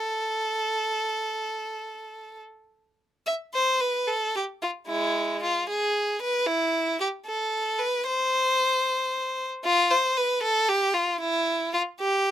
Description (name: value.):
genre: classical, baroque-style suite movement for unaccompanied violin.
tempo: 67-78 BPM (dotted quarters).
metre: 12/8.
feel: rubato.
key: A minor.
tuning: A4 = 440 Hz.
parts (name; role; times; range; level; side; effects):
clear violin; solo; 0.0-12.3 s; G#3 to E5; -24 LUFS; equal; none.
room: little or no reverb.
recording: close, detailed microphones.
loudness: -23 LUFS.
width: side -11 dB against mid.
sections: 0.0-3.3 A section; 3.3-12.3 B section.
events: none.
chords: none.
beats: 0.64 1.51 2.38 | 3.26 4.07 4.88 5.68 | 6.47 7.26 8.06 8.85 | 9.64 10.43 11.21 12.00.